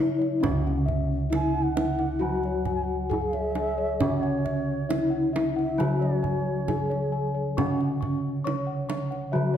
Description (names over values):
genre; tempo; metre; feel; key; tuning
Javanese gamelan; 67 BPM; 4/4; straight; unclear; A4 = 445 Hz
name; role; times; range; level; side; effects
gamelan-type bronze metallophone; melody; 0.0-9.6 s; C#4 to C#5; -28 LUFS; left 2 dB; none
gamelan-type bronze metallophone; accompaniment; 0.0-9.6 s; C#3 to F#3; -31 LUFS; right 3 dB; none
gamelan-type bossed gongs; bass; 0.0-9.6 s; C#2 to E4-45c; -30 LUFS; equal; none
gamelan-type bossed gongs; arpeggios; 0.2-9.6 s; C#5 to C#6; -34 LUFS; left 6 dB; none
kendang; percussion; 0.2-9.2 s; none; -33 LUFS; right 5 dB; none
bansuri; second line; 1.3-7.4 s; C#5 to G#5; -34 LUFS; right 4 dB; none
room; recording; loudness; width
moderate scoring stage reverb, RT60 1.6 s; dark, warm production; -24 LUFS; side -9 dB against mid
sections
0.4-9.6 A section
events
none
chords
none